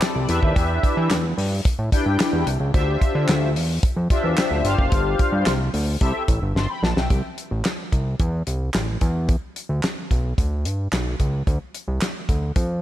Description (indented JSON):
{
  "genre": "early-eighties boogie funk",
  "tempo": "110 BPM",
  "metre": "4/4",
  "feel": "straight",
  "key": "C major",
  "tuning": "A4 = 440 Hz",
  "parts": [
    { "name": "mellow synth brass", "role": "accompaniment", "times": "0.0-7.2 s", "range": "C4 to C6", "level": "-24 LUFS", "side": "left 2 dB", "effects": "chorus, phaser, slapback echo" },
    { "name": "damped 70s drum kit", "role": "drums", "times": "0.0-12.7 s", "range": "handclaps, hi-hat, kick drum, snare drum", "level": "-22 LUFS", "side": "equal", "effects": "none" },
    { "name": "fat analog bass", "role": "bass", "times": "0.2-12.8 s", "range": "F#1 to E3", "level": "-22 LUFS", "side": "equal", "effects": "none" }
  ],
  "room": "light reverb, studio ambience",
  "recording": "none",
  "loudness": "-19 LUFS",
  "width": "side -13 dB against mid",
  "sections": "0.0-7.1 A section; 7.1-12.8 B section",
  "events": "drum fill 6.6-7.1",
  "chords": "0.3 Em7; 2.7 Dm11; 4.7 G7sus4; 6.0 C6; 9.0 Em7; 11.5 Dm7",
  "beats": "0.01 | 0.56 1.11 1.65 2.20 | 2.74 3.29 3.83 4.38 | 4.92 5.47 6.01 6.56 | 7.11 7.65 8.20 8.74 | 9.29 9.83 10.38 10.92 | 11.47 12.02 12.56"
}